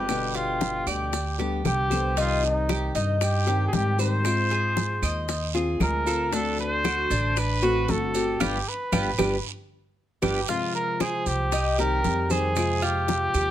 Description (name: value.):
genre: latin, Cuban son and guajira.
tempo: 115 BPM.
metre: 4/4.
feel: straight.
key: C minor.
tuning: A4 = 439 Hz.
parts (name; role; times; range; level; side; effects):
warm trumpet; melody; 0.0-13.5 s; Eb4 to C5; -27 LUFS; right 1 dB; none.
nylon-string guitar; accompaniment; 0.0-13.5 s; B2 to G4; -30 LUFS; left 4 dB; none.
Cuban tres; arpeggios; 0.0-13.5 s; D4 to Eb5; -30 LUFS; right 1 dB; none.
upright bass; bass; 0.0-13.5 s; G1 to Ab2; -28 LUFS; right 1 dB; none.
bongos; percussion; 0.1-13.5 s; none; -33 LUFS; left 7 dB; none.
claves; percussion; 0.1-13.5 s; none; -36 LUFS; right 6 dB; none.
congas; percussion; 0.1-13.3 s; none; -32 LUFS; equal; none.
guiro; percussion; 0.1-13.5 s; none; -38 LUFS; right 9 dB; none.
maracas; percussion; 0.1-13.5 s; none; -38 LUFS; right 5 dB; none.
room: little or no reverb.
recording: close, detailed microphones.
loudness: -22 LUFS.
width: side -12 dB against mid.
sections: 0.0-10.5 A section; 10.5-13.5 B section.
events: band accent 8.4-10.5.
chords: 0.1 G; 2.2 Cm; 4.2 Ab6; 6.3 D7; 8.4 G7; 10.5 Fm; 11.5 Cm; 12.6 Fm.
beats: | 0.09 0.61 1.13 1.65 | 2.17 2.69 3.21 3.73 | 4.25 4.77 5.29 5.81 | 6.33 6.85 7.37 7.89 | 8.41 8.93 9.45 9.97 | 10.49 11.01 11.53 12.04 | 12.56 13.09.